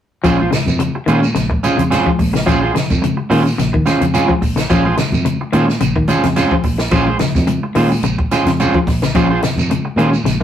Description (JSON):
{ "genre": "afrobeat", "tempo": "108 BPM", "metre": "4/4", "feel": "swing 54% on 16ths", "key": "Bb minor", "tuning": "A4 = 440 Hz", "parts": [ { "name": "semi-hollow electric guitar", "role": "arpeggios", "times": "0.2-10.4 s", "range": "Db3 to F3", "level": "-18 LUFS", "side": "left 4 dB", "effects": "none" }, { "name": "electric guitar at the edge of break-up", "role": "stabs", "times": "0.2-10.4 s", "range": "Db4 to C5", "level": "-17 LUFS", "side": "right 3 dB", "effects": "none" }, { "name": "fingered electric bass", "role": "bass", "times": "0.2-10.4 s", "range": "Bb1 to Bb2", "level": "-19 LUFS", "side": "right 1 dB", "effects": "none" }, { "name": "compact cocktail drum kit", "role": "drums", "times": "0.2-10.4 s", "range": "hi-hat, kick drum, snare drum", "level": "-22 LUFS", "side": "equal", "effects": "none" }, { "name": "congas", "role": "percussion", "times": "0.2-10.3 s", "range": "none", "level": "-24 LUFS", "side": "right 1 dB", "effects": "none" }, { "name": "shekere", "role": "percussion", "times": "0.2-10.4 s", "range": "none", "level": "-25 LUFS", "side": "right 4 dB", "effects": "none" } ], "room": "moderate small room reverb, RT60 0.5 s", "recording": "rough rehearsal-room recording, warm saturation", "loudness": "-13 LUFS", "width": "side -10 dB against mid", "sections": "0.2-10.4 A section", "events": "none", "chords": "0.2 Bbm9" }